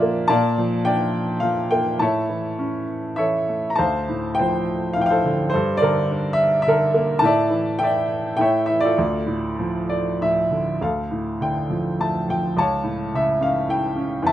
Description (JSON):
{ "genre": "classical, lyrical solo piano", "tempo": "104 BPM", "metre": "3/4", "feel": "rubato", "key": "D minor, D harmonic minor from 10.8 s", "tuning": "A4 = 440 Hz", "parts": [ { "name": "clear baby grand piano", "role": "solo", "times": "0.0-14.3 s", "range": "C#2 to Bb5", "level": "-19 LUFS", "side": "equal", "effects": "none" } ], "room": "light reverb", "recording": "close, detailed microphones", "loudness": "-19 LUFS", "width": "side -12 dB against mid", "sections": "0.0-10.8 A section; 10.8-14.3 B section", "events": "none", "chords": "0.0 Bb; 2.0 A; 3.8 Dm7; 5.5 Gmadd9; 7.2 A7sus4; 8.4 A7; 9.0 Dm; 12.6 A/C#", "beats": "| 0.29 0.85 1.43 | 2.00 2.58 3.17 | 3.77 4.37 4.95 | 5.52 6.09 6.66 | 7.22 7.79 8.38 | 8.96 9.57 10.19 | 10.80 11.39 11.98 | 12.56 13.13 13.69 | 14.24" }